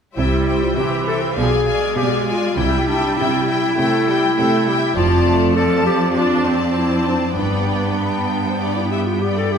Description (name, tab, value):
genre	quick classical-period movement for symphony orchestra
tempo	99 BPM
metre	4/4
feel	rubato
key	C major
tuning	A4 = 441 Hz
part	clear studio violin section	melody	0.2-9.6 s	G5 to A5	-28 LUFS	left 4 dB	none
part	clear clarinet	second line	0.2-9.6 s	D4 to A4	-20 LUFS	left 2 dB	none
part	rich studio violin section	second line	0.2-9.6 s	B4 to G5	-24 LUFS	left 4 dB	none
part	bright studio viola section	accompaniment	0.2-9.5 s	E3 to D4	-23 LUFS	right 2 dB	none
part	clear studio double bass section	bass	0.2-8.0 s	F1 to C2	-24 LUFS	right 3 dB	none
part	rich studio cello section	bass	0.2-9.6 s	F2 to C3	-22 LUFS	right 2 dB	none
room	wet concert hall reverb, RT60 1.9 s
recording	heard from further back in the room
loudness	-15 LUFS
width	side -7 dB against mid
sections	0.2-9.6 A section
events	none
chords	0.2 C; 1.4 Bdim7; 2.6 C; 5.0 Dm/F; 7.4 G